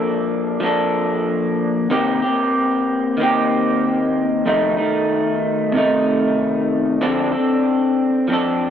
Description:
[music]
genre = indie pop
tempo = 94 BPM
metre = 4/4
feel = straight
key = Bb major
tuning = A4 = 441 Hz
[part]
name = electric guitar through a small old amp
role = solo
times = 0.0-8.7 s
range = F2 to A4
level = -16 LUFS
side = equal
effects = lush chorus, warbly pitch drift
[sound]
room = light reverb, digital ambience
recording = none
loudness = -16 LUFS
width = side -9 dB against mid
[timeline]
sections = 0.0-8.7 A section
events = none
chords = 0.0 Bbmaj7; 1.9 Cm7; 4.5 F7; 7.0 Dm7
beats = 0.61 1.25 | 1.89 2.53 3.17 3.81 | 4.45 5.09 5.73 6.37 | 7.01 7.65 8.29

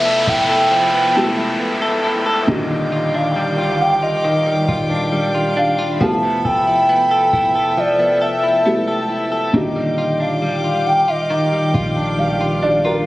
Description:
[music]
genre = contemporary R&B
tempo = 68 BPM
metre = 4/4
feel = straight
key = unclear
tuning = A4 = 440 Hz
[part]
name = hollow clarinet-like synth lead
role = melody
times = 0.0-12.0 s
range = D5 to A5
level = -18 LUFS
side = equal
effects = chorus, tape echo
[part]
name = felt-muted upright piano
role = accompaniment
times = 0.0-13.1 s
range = D3 to F5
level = -23 LUFS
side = equal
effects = none
[part]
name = dark studio string section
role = sustained chords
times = 0.0-13.0 s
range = G4 to D6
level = -25 LUFS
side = equal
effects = none
[part]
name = direct-recorded clean electric guitar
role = arpeggios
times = 0.0-13.1 s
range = Eb3 to A4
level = -20 LUFS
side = left 1 dB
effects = harmonic tremolo
[part]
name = clean 808-style bass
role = bass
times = 0.0-13.0 s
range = Eb1 to Bb1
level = -28 LUFS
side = equal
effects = none
[part]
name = downlifter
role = sound effects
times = 0.0-6.0 s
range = none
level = -24 LUFS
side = equal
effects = none
[sound]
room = light reverb, studio ambience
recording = recorded on a phone in the room, studio reverb, compression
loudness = -14 LUFS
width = side -17 dB against mid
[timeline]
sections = 0.0-13.1 A section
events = none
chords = 0.0 Fmaj9#11; 2.5 Ebmaj9; 6.0 Fmaj9#11; 9.5 Ebmaj9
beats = 0.71 1.60 | 2.48 3.36 4.25 5.13 | 6.01 6.89 7.77 8.66 | 9.54 10.42 11.30 12.19

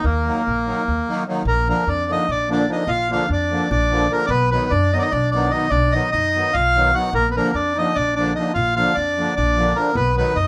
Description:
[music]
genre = balkan folk, Balkan wedding band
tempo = 296 BPM (eighths)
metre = 7/8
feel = straight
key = unclear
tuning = A4 = 438 Hz
[part]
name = accordion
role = melody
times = 0.0-10.5 s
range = Bb3 to F#5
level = -22 LUFS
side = equal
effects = none
[part]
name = warm clarinet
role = second line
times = 0.0-10.5 s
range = Bb3 to Bb4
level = -31 LUFS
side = equal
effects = none
[part]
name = upright bass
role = bass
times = 0.0-10.5 s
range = Bb1 to F#2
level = -25 LUFS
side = equal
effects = none
[part]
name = musette accordion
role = accompaniment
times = 0.2-10.3 s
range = D3 to Eb4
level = -26 LUFS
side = equal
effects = none
[sound]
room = moderate studio ambience, RT60 0.4 s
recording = band playing live in one room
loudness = -19 LUFS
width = mono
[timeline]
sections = 0.0-1.5 A section; 1.5-10.5 B section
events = none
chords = 0.0 Ebm; 1.5 Bb; 4.3 B; 7.1 Bb; 9.9 B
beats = | 0.04 0.24 0.44 0.65 0.85 1.05 1.25 | 1.46 1.66 1.86 2.07 2.27 2.47 2.67 | 2.88 3.08 3.28 3.48 3.69 3.89 4.09 | 4.29 4.50 4.70 4.90 5.10 5.31 5.51 | 5.71 5.91 6.12 6.32 6.52 6.72 6.92 | 7.13 7.33 7.53 7.73 7.93 8.13 8.34 | 8.54 8.74 8.94 9.14 9.34 9.54 9.74 | 9.95 10.15 10.35

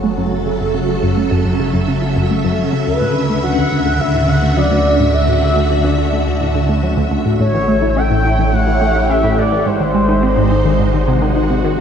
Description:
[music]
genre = ambient, sequencer-driven space music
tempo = 106 BPM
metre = 4/4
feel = straight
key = unclear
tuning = A4 = 436 Hz
[part]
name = phased string machine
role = sustained chords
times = 0.0-11.8 s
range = C#3 to E5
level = -17 LUFS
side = right 1 dB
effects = ensemble chorus, phaser, shimmer reverb
[part]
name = analog pluck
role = riff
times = 0.0-11.8 s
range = D2 to E4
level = -18 LUFS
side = equal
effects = chorus, phaser, tape echo
[part]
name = warm sub bass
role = bass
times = 0.0-11.8 s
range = F#1 to D2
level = -20 LUFS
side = equal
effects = none
[part]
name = expressive synth lead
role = melody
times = 2.9-11.4 s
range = B4 to G5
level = -18 LUFS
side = left 1 dB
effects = lush chorus, shimmer reverb, tape echo
[sound]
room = wet huge ambient reverb, RT60 8.9 s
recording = dark, warm production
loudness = -12 LUFS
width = side -8 dB against mid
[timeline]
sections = 0.0-11.8 A section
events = fade-in on sub bass 0.0-11.8; filter sweep on synth arpeggio sound 0.0-11.8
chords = 0.0 F#m7; 2.9 Dmaj9; 7.4 A7; 9.7 G#7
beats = 0.04 | 0.61 1.17 1.74 2.30 | 2.87 3.44 4.00 4.57 | 5.13 5.70 6.27 6.83 | 7.40 7.96 8.53 9.10 | 9.66 10.23 10.79 11.36

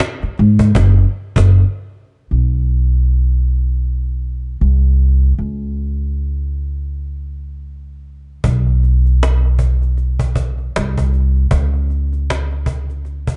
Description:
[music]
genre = R&B, neo-soul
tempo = 78 BPM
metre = 4/4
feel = swing 58% on 16ths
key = unclear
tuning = A4 = 444 Hz
[part]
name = cajon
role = drums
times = 0.0-1.6, 8.4-13.4 s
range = none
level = -22 LUFS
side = equal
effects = none
[part]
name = upright bass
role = bass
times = 0.2-13.4 s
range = F#1 to G#2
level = -16 LUFS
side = equal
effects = none
[sound]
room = little or no reverb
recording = dark, warm production, nothing above 10.7 kHz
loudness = -16 LUFS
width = mono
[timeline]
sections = 0.0-2.3 A section; 2.3-13.4 B section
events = band accent 0.7-2.3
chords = none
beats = 0.75 1.52 | 2.29 3.06 3.83 4.59 | 5.36 6.13 6.90 7.67 | 8.44 9.21 9.98 10.75 | 11.52 12.29 13.06

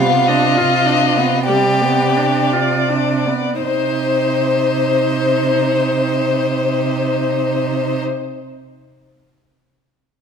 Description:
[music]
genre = classical, slow romantic movement for string quartet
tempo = 26-37 BPM (dotted quarters)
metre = 6/8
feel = rubato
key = C minor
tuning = A4 = 443 Hz
[part]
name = rich violin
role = melody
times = 0.0-8.0 s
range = C5 to F5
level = -21 LUFS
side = left 9 dB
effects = none
[part]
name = clear violin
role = second line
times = 0.0-8.0 s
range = F4 to C5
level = -19 LUFS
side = left 3 dB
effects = none
[part]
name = rich viola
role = accompaniment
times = 0.0-8.0 s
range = G3 to F4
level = -21 LUFS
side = right 4 dB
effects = none
[part]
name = clear cello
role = bass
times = 0.0-8.0 s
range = C3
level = -20 LUFS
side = right 6 dB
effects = none
[sound]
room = moderate recital hall reverb, RT60 1.8 s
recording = none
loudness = -14 LUFS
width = side -6 dB against mid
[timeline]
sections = 0.0-3.6 A section; 3.6-7.8 B section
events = slowing down 0.0-3.6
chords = 0.0 G7/C; 3.6 Cm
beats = 1.48 | 3.63 5.70

